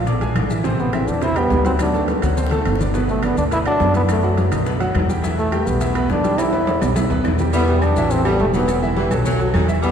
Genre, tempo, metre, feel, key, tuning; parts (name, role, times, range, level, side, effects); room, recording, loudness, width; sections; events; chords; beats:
latin, salsa; 209 BPM; 4/4; straight; E minor; A4 = 440 Hz
bright grand piano; accompaniment; 0.0-9.9 s; B2 to E6; -23 LUFS; right 2 dB
upright bass; bass; 0.0-9.9 s; E1 to F#2; -21 LUFS; equal
bongos and cowbell; percussion; 0.1-9.9 s; -29 LUFS; left 4 dB
congas; percussion; 0.1-9.9 s; -27 LUFS; left 1 dB
maracas; percussion; 0.1-9.9 s; -40 LUFS; left 4 dB
timbales and agogo bells; percussion; 0.2-9.9 s; -28 LUFS; right 4 dB
claves; percussion; 0.4-9.7 s; -37 LUFS; right 1 dB
bright trombone; melody; 0.8-9.9 s; A3 to E4; -22 LUFS; equal
clear saxophone section; second line; 7.5-9.9 s; D#3 to G3; -26 LUFS; left 1 dB
wet cathedral reverb, RT60 4.6 s; recorded in a church or concert hall; -16 LUFS; side -8 dB against mid
0.0-7.5 A section; 7.5-9.9 B section
drum fill 1.8-2.9, 6.4-7.5
0.1 A#7#11; 0.6 Am7; 1.8 D7; 2.9 Gmaj7; 4.1 Badd11; 4.7 B; 5.2 Em; 7.5 Em9; 8.1 Emadd9; 9.3 B7
0.07 0.36 | 0.64 0.93 1.22 1.50 | 1.79 2.08 2.37 2.65 | 2.94 3.23 3.52 3.80 | 4.09 4.38 4.66 4.95 | 5.24 5.53 5.81 6.10 | 6.39 6.67 6.96 7.25 | 7.53 7.82 8.11 8.39 | 8.68 8.97 9.25 9.54 | 9.83